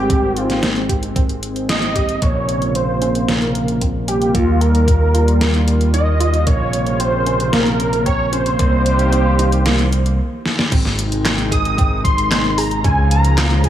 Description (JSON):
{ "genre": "synthwave", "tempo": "113 BPM", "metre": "4/4", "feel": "straight", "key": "unclear", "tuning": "A4 = 441 Hz", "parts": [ { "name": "wide unison lead", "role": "melody", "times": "0.0-13.7 s", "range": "F4 to Eb6", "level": "-20 LUFS", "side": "right 1 dB", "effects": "digital delay" }, { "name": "warm analog pad", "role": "sustained chords", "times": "0.0-13.7 s", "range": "C3 to G5", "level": "-22 LUFS", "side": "equal", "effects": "lush chorus, sidechain pumping" }, { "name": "modern bright picked electric bass", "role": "bass", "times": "0.0-13.7 s", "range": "Ab1 to Eb2", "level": "-18 LUFS", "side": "equal", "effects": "none" }, { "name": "analog pluck", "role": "arpeggios", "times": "0.1-13.7 s", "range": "Bb3 to Ab4", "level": "-27 LUFS", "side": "right 2 dB", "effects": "chorus, digital delay" }, { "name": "electronic kick drum", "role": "drums", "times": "0.1-13.7 s", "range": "none", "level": "-17 LUFS", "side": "equal", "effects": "none" }, { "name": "pop drum kit", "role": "drums", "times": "0.1-13.7 s", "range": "crash cymbal, handclaps, hi-hat, snare drum", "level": "-21 LUFS", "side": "equal", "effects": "overdrive" } ], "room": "moderate plate reverb, RT60 2.0 s", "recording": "none", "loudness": "-14 LUFS", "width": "side -11 dB against mid", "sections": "0.0-2.2 A section; 2.2-10.7 B section; 10.7-13.7 C section", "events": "band accent 1.7; filter sweep on synth arpeggio sound 2.2-10.7; stop 10.2-10.7; drum fill 10.5", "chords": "0.0 Abmaj7; 2.2 Bbmadd9; 4.3 Ebadd9; 6.5 Bbmadd9; 8.6 Cm7; 10.7 Ab; 12.8 Db" }